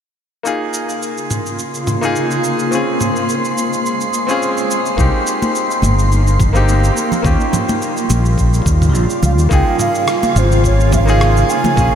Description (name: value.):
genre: sunset chillout.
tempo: 106 BPM.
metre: 4/4.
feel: swing 54% on 16ths.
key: unclear.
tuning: A4 = 438 Hz.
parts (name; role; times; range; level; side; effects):
bright grand piano; accompaniment; 0.4-11.9 s; Bb3 to Ab4; -20 LUFS; left 1 dB; auto-pan, diffuse ambient delay.
wind-like tuned noise texture; texture; 1.3-9.5 s; C6; -24 LUFS; left 1 dB; built-in reverb.
shimmering ambient pad; sustained chords; 1.0-11.9 s; Db3 to F4; -20 LUFS; equal; chorus, built-in reverb, vintage 12-bit sampler grit.
dusty soul sampler-style drum kit; drums; 0.5-11.9 s; cabasa, rim click, toms; -24 LUFS; right 1 dB; none.
modern bright fingered electric bass; bass; 5.0-11.9 s; G1 to Eb2; -13 LUFS; equal; none.
electronic kick drum; drums; 5.0-11.9 s; none; -17 LUFS; equal; none.
congas; percussion; 5.4-11.8 s; none; -24 LUFS; right 1 dB; none.
mellow hollow wooden flute; melody; 9.3-11.9 s; C5 to Ab5; -18 LUFS; right 3 dB; diffuse ambient delay.
room: moderate huge ambient reverb, RT60 7.2 s.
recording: dreamy mix soaked in reverb.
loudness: -13 LUFS.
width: side -8 dB against mid.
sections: 0.5-9.5 A section; 9.5-11.9 B section.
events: filter sweep on ambient pad 0.5-9.5.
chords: 0.5 Db6; 2.7 Dbmaj7/Ab; 5.0 Cm7; 7.2 Eb9; 9.5 Db6.